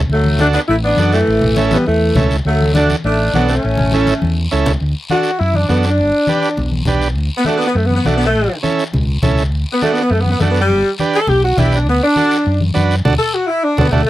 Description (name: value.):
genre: latin, cumbia.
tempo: 204 BPM.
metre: 4/4.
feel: straight.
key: D major.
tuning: A4 = 440 Hz.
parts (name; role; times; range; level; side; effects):
fingered electric bass; bass; 0.0-14.0 s; G1 to F#2; -16 LUFS; equal; none.
clear saxophone section; melody; 0.1-14.1 s; E3 to A4; -15 LUFS; left 1 dB; none.
congas; percussion; 0.1-14.0 s; none; -20 LUFS; left 2 dB; none.
guiro; percussion; 0.1-14.0 s; none; -28 LUFS; left 4 dB; none.
overdriven combo organ; accompaniment; 0.4-14.0 s; C#4 to B4; -18 LUFS; right 5 dB; none.
room: little or no reverb.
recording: dry, close 1970s-style studio recording.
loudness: -12 LUFS.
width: side -15 dB against mid.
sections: 0.0-4.8 A section; 4.8-14.1 B section.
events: drum fill 4.1-4.8, 13.6-14.1; saxophone section solo 4.8-14.1; band accent 13.0-14.1.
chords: 0.1 D; 1.3 A; 2.5 D; 3.6 A; 4.8 D; 6.0 G; 7.2 D; 8.3 A; 9.5 D; 10.7 G; 11.9 D.